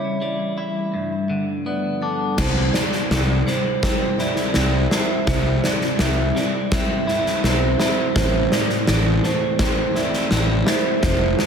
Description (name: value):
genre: post-rock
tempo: 83 BPM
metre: 4/4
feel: straight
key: C major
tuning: A4 = 439 Hz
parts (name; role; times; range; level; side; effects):
- ethereal airy pad; sustained chords; 0.0-11.5 s; C#3 to F4; -29 LUFS; left 1 dB; ensemble chorus, built-in reverb
- clean electric guitar; arpeggios; 0.0-11.5 s; G2 to E4; -26 LUFS; left 1 dB; analog delay
- vibraphone with medium hard mallets; arpeggios; 0.0-11.5 s; A4 to E5; -26 LUFS; right 6 dB; analog delay
- fuzz fingered electric bass; bass; 2.4-11.3 s; F1 to C2; -21 LUFS; equal; overdrive
- big rock drum kit; drums; 2.4-11.5 s; crash cymbal, kick drum, snare drum; -20 LUFS; left 1 dB; none
room: wet scoring stage reverb, RT60 1.9 s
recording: big arena sound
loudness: -18 LUFS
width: side -7 dB against mid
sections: 0.0-2.4 A section; 2.4-11.5 B section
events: break 0.0-2.4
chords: 0.0 A7/C#; 0.9 G7; 2.4 C; 8.2 Am